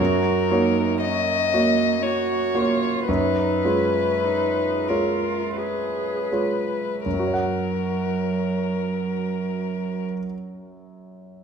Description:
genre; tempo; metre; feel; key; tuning
classical, slow romantic movement for piano trio; 39-64 BPM; 3/4; rubato; F# major; A4 = 442 Hz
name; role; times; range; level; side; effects
muted violin; melody; 0.0-10.0 s; A#4 to D#5; -25 LUFS; left 5 dB; none
muted cello; second line; 0.0-10.1 s; F#3 to G#4; -27 LUFS; right 5 dB; none
clear concert grand piano; accompaniment; 0.0-11.4 s; F#2 to F#5; -24 LUFS; right 2 dB; none
room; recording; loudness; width
wet recital hall reverb, RT60 1.5 s; minimal, uncompressed stereo recording; -20 LUFS; side -6 dB against mid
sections
0.0-7.0 A section; 7.0-11.2 B section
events
slowing down 0.0-7.0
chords
0.0 F#; 3.1 C#7/F#; 7.0 F#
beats
1.00 2.02 | 3.08 4.23 5.57 | 7.04 8.43 9.83

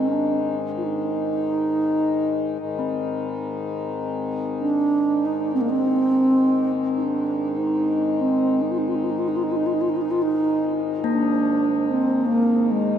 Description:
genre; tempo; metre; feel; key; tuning
world meditative, free-time meditation music; free time; none; none; Ab lydian; A4 = 440 Hz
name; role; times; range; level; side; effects
mellow bass flute; melody; 0.0-13.0 s; Ab3 to F4; -21 LUFS; right 2 dB; shimmer reverb, tape echo
pedal harmonium; drone; 0.0-13.0 s; Ab2 to Eb3; -27 LUFS; left 4 dB; none
quartz singing bowl; texture; 2.8-13.0 s; Bb3 to C4; -29 LUFS; left 4 dB; none
room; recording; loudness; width
wet cathedral reverb, RT60 5.3 s; none; -20 LUFS; side -9 dB against mid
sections
0.0-13.0 A section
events
none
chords
none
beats
free time

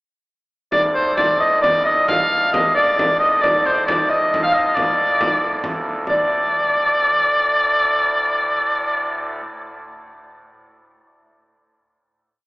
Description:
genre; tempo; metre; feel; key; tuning
medieval dance; 88-97 BPM (dotted quarters); 6/8; straight; D phrygian; A4 = 442 Hz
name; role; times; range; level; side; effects
clear shawm; melody; 0.7-9.4 s; C5 to F5; -17 LUFS; equal; none
concert harp; second line; 0.7-10.1 s; C5 to F5; -22 LUFS; equal; none
pipe organ, soft reed; drone; 0.7-9.4 s; D2 to A2; -27 LUFS; right 1 dB; none
frame drum; percussion; 0.7-6.3 s; none; -27 LUFS; equal; none
room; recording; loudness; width
wet church reverb, RT60 3.8 s; band playing live in one room, AM radio sound; -15 LUFS; side -23 dB against mid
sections
0.7-6.1 A section; 6.1-8.6 final chord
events
speeding up 0.7-8.6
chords
none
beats
| 0.73 1.41 | 2.09 2.76 | 3.44 4.10 | 4.77 5.42 | 6.07 6.72 | 7.35 7.98

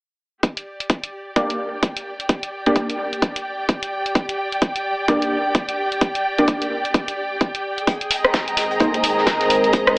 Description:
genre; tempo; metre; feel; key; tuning
bass house; 129 BPM; 4/4; swing 60% on 16ths; G phrygian; A4 = 441 Hz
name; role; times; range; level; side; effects
electronic kick drum; drums; 0.4-9.8 s; none; -19 LUFS; equal; high-pass filter on kick, high-pass filter on room
house drum kit; drums; 0.4-9.9 s; hi-hat, rim click; -22 LUFS; equal; none
rich studio string section; texture; 0.4-10.0 s; G4 to Bb5; -23 LUFS; equal; sidechain pumping
orchestra-hit-like synth stab; stabs; 1.4-8.9 s; Bb3 to D5; -22 LUFS; equal; built-in reverb, sidechain pumping, tape echo
deep dark ambient pad; sustained chords; 8.7-10.0 s; Ab3 to C5; -22 LUFS; equal; chorus, built-in reverb, sidechain pumping
loose indie drum kit; drums; 7.9-9.9 s; hi-hat, snare drum; -27 LUFS; equal; high-pass filter on hats, high-pass filter on snare, high-pass filter on room
room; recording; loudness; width
moderate lush hall reverb, RT60 1.8 s, small room reverb; AM radio sound; -18 LUFS; side -26 dB against mid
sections
0.4-10.0 A section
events
fade-in on string section 0.4-10.0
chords
0.4 G5; 7.9 Abadd9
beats
| 0.43 0.90 1.36 1.83 | 2.29 2.76 3.22 3.69 | 4.15 4.62 5.08 5.55 | 6.01 6.48 6.94 7.41 | 7.87 8.34 8.80 9.27 | 9.73

